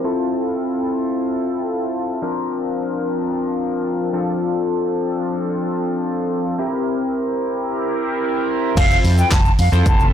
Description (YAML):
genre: dance-pop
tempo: 110 BPM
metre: 4/4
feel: straight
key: F major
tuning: A4 = 443 Hz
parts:
  - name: chorused polysynth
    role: accompaniment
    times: 0.0-10.1 s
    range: F3 to C5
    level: -20 LUFS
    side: left 1 dB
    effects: sidechain pumping
  - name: mellow hollow silver concert flute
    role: melody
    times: 8.8-10.1 s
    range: F5 to A5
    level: -20 LUFS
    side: equal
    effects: tape echo
  - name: vintage muted fingered electric bass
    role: bass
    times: 8.8-10.1 s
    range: F1 to F2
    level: -16 LUFS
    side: equal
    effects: transformer saturation, sidechain pumping
  - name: deep house drum kit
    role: drums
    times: 8.8-10.1 s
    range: crash cymbal, handclaps, hi-hat, kick drum, shaker, snare drum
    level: -17 LUFS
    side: equal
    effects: none
room: moderate echo chamber reverb, RT60 1.4 s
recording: blown-out, overdriven recording, overdrive, low-pass filter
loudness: -18 LUFS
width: side -9 dB against mid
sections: 0.0-8.8 A section; 8.8-10.1 B section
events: filter sweep 0.0-8.8; drop 8.8-10.1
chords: 0.0 Fmaj7; 2.2 Bbadd9/F; 4.1 Dm7/F; 6.6 C7; 8.8 Fmaj7